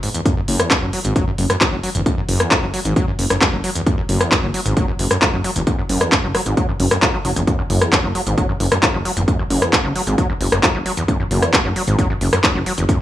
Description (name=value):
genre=driving peak-time techno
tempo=133 BPM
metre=4/4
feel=straight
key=unclear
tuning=A4 = 441 Hz
part: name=overdriven acid bass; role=riff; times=0.0-13.0 s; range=E2 to F#3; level=-22 LUFS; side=equal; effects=distortion, sidechain pumping, tape echo
part: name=techno drum kit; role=drums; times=0.0-13.0 s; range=handclaps, hi-hat, rim click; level=-18 LUFS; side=equal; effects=sidechain pumping on hats
part: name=electronic kick drum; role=drums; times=0.3-13.0 s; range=none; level=-20 LUFS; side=equal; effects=none
part: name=dark detuned saw bass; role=bass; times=0.5-12.9 s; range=F#1 to G#1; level=-20 LUFS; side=equal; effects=sidechain pumping
room=little or no reverb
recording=dry, gritty hardware recording, transformer saturation, small room ambience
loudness=-15 LUFS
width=side -13 dB against mid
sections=0.0-13.0 A section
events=none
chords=none